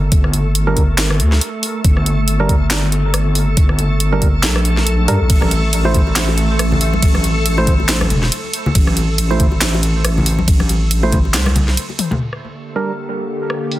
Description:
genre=deep dubstep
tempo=139 BPM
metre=4/4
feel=swing 57% on 16ths, half-time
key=G dorian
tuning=A4 = 440 Hz
part: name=wobble bass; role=bass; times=0.0-11.8 s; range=E1 to G2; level=-16 LUFS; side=equal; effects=chorus
part: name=backwards swelling texture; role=texture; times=0.0-12.2 s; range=A3 to A4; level=-24 LUFS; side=equal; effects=built-in reverb
part: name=electronic kick drum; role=drums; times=0.1-11.2 s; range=none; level=-14 LUFS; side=equal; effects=none
part: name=garage drum kit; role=drums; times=0.1-13.8 s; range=handclaps, hi-hat, ride cymbal, rim click, snare drum, toms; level=-20 LUFS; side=equal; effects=low-pass filter on hats, low-pass filter on snare, low-pass filter on cymbals, low-pass filter on toms
part: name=percussive organ stab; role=stabs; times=0.7-12.9 s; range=G3 to C5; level=-24 LUFS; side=right 3 dB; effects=chorus, dub echo
part: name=congas and bongos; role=percussion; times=5.4-12.2 s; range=none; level=-23 LUFS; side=left 2 dB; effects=dub echo
part: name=bowed-like drone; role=sustained chords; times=12.4-13.8 s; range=D3 to G4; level=-23 LUFS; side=left 1 dB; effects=built-in reverb
room=light reverb, digital ambience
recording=dense, heavily limited modern master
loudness=-13 LUFS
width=side -15 dB against mid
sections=0.0-12.2 A section; 12.2-13.8 B section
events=drop 0.0-12.2; break 11.8-12.2; drum fill 12.0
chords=0.0 Gm; 5.3 Am; 12.2 Gm

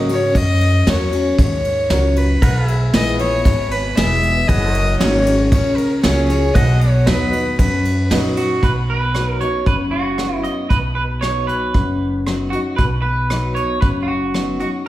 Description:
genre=honky-tonk and classic country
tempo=116 BPM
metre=4/4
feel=straight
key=B major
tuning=A4 = 440 Hz
part: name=clear grand piano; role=accompaniment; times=0.0-8.4 s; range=C#4 to D#5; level=-27 LUFS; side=right 3 dB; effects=none
part: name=picked steel-string acoustic guitar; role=accompaniment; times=0.0-14.9 s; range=E2 to G#4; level=-21 LUFS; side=left 2 dB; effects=none
part: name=pedal steel guitar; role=sustained chords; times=0.0-8.6 s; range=G#4 to F#5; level=-30 LUFS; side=left 1 dB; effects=none
part: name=upright bass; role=bass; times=0.0-14.6 s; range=E1 to A#2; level=-20 LUFS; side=equal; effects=none
part: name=rich fiddle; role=melody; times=0.1-8.1 s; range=A#4 to E5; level=-20 LUFS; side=left 1 dB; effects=none
part: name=soft brush drum kit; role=drums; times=0.1-14.7 s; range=hi-hat, kick drum, ride cymbal, rim click, snare drum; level=-20 LUFS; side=equal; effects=none
part: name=electric guitar at the edge of break-up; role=second line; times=8.4-14.7 s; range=E#4 to D#5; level=-22 LUFS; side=right 3 dB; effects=tape echo
room=wet recital hall reverb, RT60 1.3 s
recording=heard from further back in the room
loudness=-14 LUFS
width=side -14 dB against mid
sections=0.0-8.6 A section; 8.6-14.9 B section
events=clean electric guitar solo 8.6-14.9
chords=0.0 F#; 2.4 E; 4.5 F#add9; 6.6 B

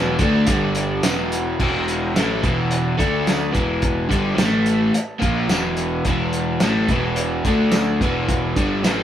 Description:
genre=classic rock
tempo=108 BPM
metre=4/4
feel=straight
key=unclear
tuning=A4 = 440 Hz
part: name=crunchy overdriven guitar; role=riff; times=0.0-9.0 s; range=E2 to D4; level=-19 LUFS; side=equal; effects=spring reverb
part: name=fuzz picked electric bass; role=bass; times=0.0-9.0 s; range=E1 to D2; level=-27 LUFS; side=right 1 dB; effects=overdrive
part: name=cloth-damped thuddy drum kit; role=drums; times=0.2-9.0 s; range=crash cymbal, hi-hat, kick drum, snare drum, tambourine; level=-22 LUFS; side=equal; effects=none
room=moderate studio ambience, RT60 0.5 s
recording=band playing live in one room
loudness=-17 LUFS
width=side -10 dB against mid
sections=0.0-1.6 A section; 1.6-9.0 B section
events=none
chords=0.5 G5; 1.0 E5; 3.0 D5; 3.5 E5; 4.4 A5; 4.9 E5; 7.4 D5; 8.0 E5

